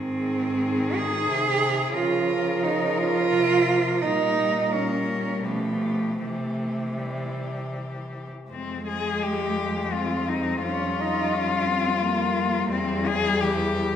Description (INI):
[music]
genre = classical, lyrical piece for cello ensemble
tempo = 77-90 BPM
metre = 3/4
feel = rubato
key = F minor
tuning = A4 = 441 Hz
[part]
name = rich cello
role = melody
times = 0.0-14.0 s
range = C4 to Bb4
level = -28 LUFS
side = left 6 dB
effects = none
[part]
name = warm cello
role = second line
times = 0.0-14.0 s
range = E3 to Ab4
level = -25 LUFS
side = right 3 dB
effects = none
[part]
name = rich cello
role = accompaniment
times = 0.0-14.0 s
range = Eb3 to Ab3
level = -32 LUFS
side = left 3 dB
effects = none
[part]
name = warm cello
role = bass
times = 0.0-14.0 s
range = E2 to Db3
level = -31 LUFS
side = equal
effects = none
[sound]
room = wet recital hall reverb, RT60 1.6 s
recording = none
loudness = -22 LUFS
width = side -9 dB against mid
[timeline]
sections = 0.0-8.5 A section; 8.5-14.0 B section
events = none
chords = 0.0 Ab; 1.9 Db6; 4.0 Gdim/Bb; 5.4 G7/B; 6.2 C; 8.5 Fm; 10.6 Eb9/F (rootless); 12.7 Em